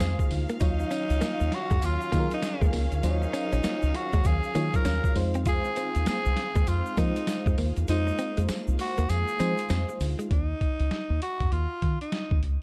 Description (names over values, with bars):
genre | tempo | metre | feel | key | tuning
R&B, new jack swing | 99 BPM | 4/4 | swing 62% on 16ths | Eb dorian | A4 = 440 Hz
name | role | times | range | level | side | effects
raspy tenor saxophone | melody | 0.0-12.4 s | Eb4 to Bb4 | -34 LUFS | equal | none
FM electric piano with tremolo | accompaniment | 0.0-10.3 s | Gb3 to Db5 | -37 LUFS | equal | phaser
warm studio string section | sustained chords | 0.0-10.3 s | Eb3 to F5 | -41 LUFS | equal | none
direct-recorded clean electric guitar | riff | 0.0-10.3 s | Ab3 to F4 | -37 LUFS | equal | analog chorus
deep dub fingered electric bass | bass | 0.0-12.6 s | Bb1 to F3 | -29 LUFS | equal | none
boom bap sampler-style drum kit | drums | 0.0-12.6 s | hi-hat, kick drum, snare drum, tambourine | -31 LUFS | equal | none
egg shaker | percussion | 0.0-10.3 s | none | -55 LUFS | equal | none
room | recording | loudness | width
digital ambience | dark, warm production | -27 LUFS | mono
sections
0.0-10.3 A section; 10.3-12.6 B section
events
kick muted 7.9-10.3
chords
0.0 Fm7; 0.6 Ebm9; 5.2 Fm7; 10.3 Eb7(no3)